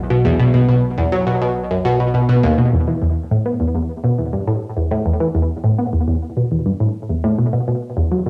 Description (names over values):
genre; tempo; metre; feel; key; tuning
ambient, sequencer-driven space music; 103 BPM; 4/4; straight; unclear; A4 = 440 Hz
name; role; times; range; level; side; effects
analog drone; bass; 0.0-2.7 s; B1; -31 LUFS; equal; chorus
analog pluck; riff; 0.1-8.3 s; D#2 to B3; -18 LUFS; equal; chorus, phaser, cassette tape, analog delay
room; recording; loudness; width
wet studio reverb, RT60 0.6 s; home recording on cassette; -18 LUFS; mono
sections
0.0-2.7 A section; 2.7-8.3 B section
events
none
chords
0.0 N.C.; 7.4 B5